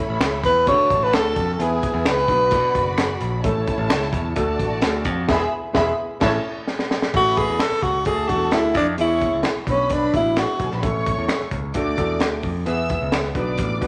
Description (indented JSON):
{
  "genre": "uptempo 1960s-style soul",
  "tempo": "130 BPM",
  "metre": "4/4",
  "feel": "straight",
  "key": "A major",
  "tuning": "A4 = 443 Hz",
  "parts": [
    { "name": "warm symphonic violin section", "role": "second line", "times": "0.0-13.9 s", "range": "D4 to E6", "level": "-30 LUFS", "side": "equal", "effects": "none" },
    { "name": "warm grand piano", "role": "accompaniment", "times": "0.0-13.9 s", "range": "F#3 to B4", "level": "-30 LUFS", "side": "equal", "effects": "none" },
    { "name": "modern bright picked electric bass", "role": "bass", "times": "0.1-13.9 s", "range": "E1 to D3", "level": "-29 LUFS", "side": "equal", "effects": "none" },
    { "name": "crunchy breakbeat drum kit", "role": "drums", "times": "0.2-13.9 s", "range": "crash cymbal, hi-hat, kick drum, snare drum", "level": "-27 LUFS", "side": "equal", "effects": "none" },
    { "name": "finger snaps", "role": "percussion", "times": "0.2-13.2 s", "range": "none", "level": "-34 LUFS", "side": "equal", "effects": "none" },
    { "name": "breathy tenor saxophone", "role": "melody", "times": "0.5-3.0, 7.2-10.7 s", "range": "C#4 to C#5", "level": "-22 LUFS", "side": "equal", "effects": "none" }
  ],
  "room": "moderate large studio reverb, RT60 1.3 s",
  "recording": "none",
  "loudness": "-21 LUFS",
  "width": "mono",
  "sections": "0.0-7.1 A section; 7.1-13.9 B section",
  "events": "band accent 5.3-7.1; drum fill 6.7-7.1",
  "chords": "0.0 A; 0.7 D; 1.6 E; 2.3 Bm; 3.4 A; 4.4 D; 5.3 E; 6.0 A; 8.1 D; 9.0 E; 9.7 Bm; 10.8 A; 11.7 D; 12.7 E; 13.4 Bm"
}